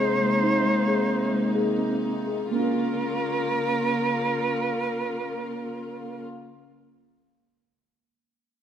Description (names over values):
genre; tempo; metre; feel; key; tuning
world meditative, meditative tuned percussion; 121-143 BPM (eighths); 7/8; straight; Bb minor; A4 = 445 Hz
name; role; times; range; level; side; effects
Native American-style cedar flute; melody; 0.0-6.2 s; Bb4 to C5; -27 LUFS; right 2 dB; none
dark chamber string section; sustained chords; 0.0-6.2 s; C3 to F4; -28 LUFS; equal; none
steel tongue drum; arpeggios; 0.0-6.4 s; Ab3 to Bb4; -26 LUFS; left 1 dB; none
room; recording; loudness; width
wet echo chamber reverb, RT60 1.7 s, small room ambience; none; -23 LUFS; side -9 dB against mid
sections
0.0-2.5 A section; 2.5-6.0 B section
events
slowing down 0.0-2.5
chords
0.0 Ab; 2.5 Bbm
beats
0.24 0.67 1.11 1.56 2.04 | 2.52 3.02 3.52 4.01 4.51 5.01 5.50